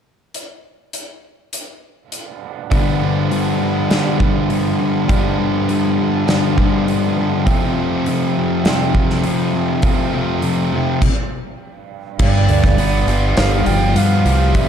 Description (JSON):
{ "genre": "rock, shoegaze and dream pop", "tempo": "101 BPM", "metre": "4/4", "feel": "straight", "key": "G mixolydian", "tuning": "A4 = 441 Hz", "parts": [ { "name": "big rock drum kit", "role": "drums", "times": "0.3-14.7 s", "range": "crash cymbal, hi-hat, kick drum, snare drum", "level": "-19 LUFS", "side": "equal", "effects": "none" }, { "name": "biting overdriven guitar", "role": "riff", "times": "2.7-14.7 s", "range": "F2 to F4", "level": "-21 LUFS", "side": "right 12 dB", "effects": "reverse reverb" }, { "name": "thick fuzz guitar", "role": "riff", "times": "2.7-14.7 s", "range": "F2 to G4", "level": "-18 LUFS", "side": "left 7 dB", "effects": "distortion, analog chorus" }, { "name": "breathy concert flute", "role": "melody", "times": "12.2-14.7 s", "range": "D5 to G5", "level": "-22 LUFS", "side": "right 4 dB", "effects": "analog delay" }, { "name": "growling fingered electric bass", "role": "bass", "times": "12.2-14.7 s", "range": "G1 to G2", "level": "-16 LUFS", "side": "right 1 dB", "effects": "overdrive" } ], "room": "small room ambience", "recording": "dark, warm production", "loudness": "-14 LUFS", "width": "side -8 dB against mid", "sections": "0.3-2.7 A section; 2.7-12.2 B section; 12.2-14.7 C section", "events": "stop 11.0-12.2", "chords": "0.3 N.C.; 2.7 G7; 7.5 F; 12.2 G7", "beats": "| 0.34 0.93 1.53 2.12 | 2.72 3.31 3.91 4.50 | 5.09 5.69 6.28 6.87 | 7.47 8.06 8.65 9.24 | 9.83 10.43 11.02 11.61 | 12.20 12.79 13.38 13.97 | 14.56" }